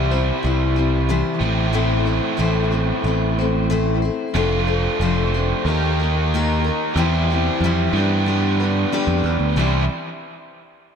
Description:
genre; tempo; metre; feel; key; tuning
folk rock and heartland rock; 92 BPM; 4/4; straight; C major; A4 = 438 Hz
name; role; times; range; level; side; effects
picked steel-string acoustic guitar; accompaniment; 0.0-9.8 s; A2 to C5; -23 LUFS; left 6 dB; tape echo
biting overdriven guitar; riff; 0.0-9.8 s; F2 to G4; -23 LUFS; right 3 dB; spring reverb, tape echo
picked electric bass; bass; 0.0-9.9 s; F1 to G2; -20 LUFS; right 1 dB; none
room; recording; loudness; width
light reverb; echo-heavy mix; -17 LUFS; side -7 dB against mid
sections
0.0-9.6 A section; 9.6-11.0 B section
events
none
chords
0.0 C; 1.4 Am; 4.4 F6; 5.7 Eb; 7.0 C/E; 7.9 G; 9.6 C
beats
0.43 1.09 | 1.74 2.39 3.05 3.70 | 4.35 5.01 5.66 6.31 | 6.96 7.62 8.27 8.92 | 9.57

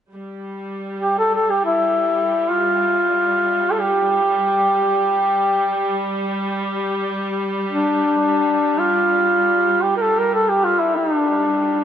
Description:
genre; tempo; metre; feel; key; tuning
caucasian folk, Caucasian lament; free time; none; none; unclear; A4 = 442 Hz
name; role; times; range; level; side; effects
rich studio string section; drone; 0.1-11.8 s; G3; -25 LUFS; equal; none
mellow duduk; melody; 1.0-11.8 s; D4 to Bb4; -17 LUFS; equal; none
room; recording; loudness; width
wet cathedral reverb, RT60 5.2 s; nothing above 11.0 kHz; -16 LUFS; side -9 dB against mid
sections
0.1-11.8 A section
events
none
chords
none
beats
free time

